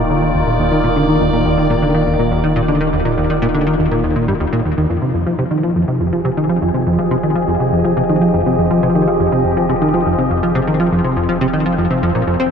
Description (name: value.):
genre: ambient, sequencer-driven space music.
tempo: 122 BPM.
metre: 4/4.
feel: straight.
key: F dorian.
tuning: A4 = 440 Hz.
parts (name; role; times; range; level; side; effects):
evolving wavetable pad; sustained chords; 0.0-12.5 s; Eb3 to Eb5; -17 LUFS; equal; phaser, built-in reverb.
plucky analog bass; riff; 0.0-12.5 s; Eb2 to C4; -16 LUFS; equal; analog chorus, ping-pong delay.
warm sub bass; bass; 0.0-12.5 s; Eb1 to F1; -28 LUFS; equal; none.
bubbling stepped-filter texture; texture; 0.0-4.9 s; Eb4; -27 LUFS; right 2 dB; none.
room: wet huge ambient reverb, RT60 7.5 s.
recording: dark, warm production.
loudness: -13 LUFS.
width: side -7 dB against mid.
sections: 0.0-4.9 A section; 4.9-12.5 B section.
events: fade-in on sub bass 4.9-12.5.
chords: 0.0 Ebmaj7; 4.9 Fm7.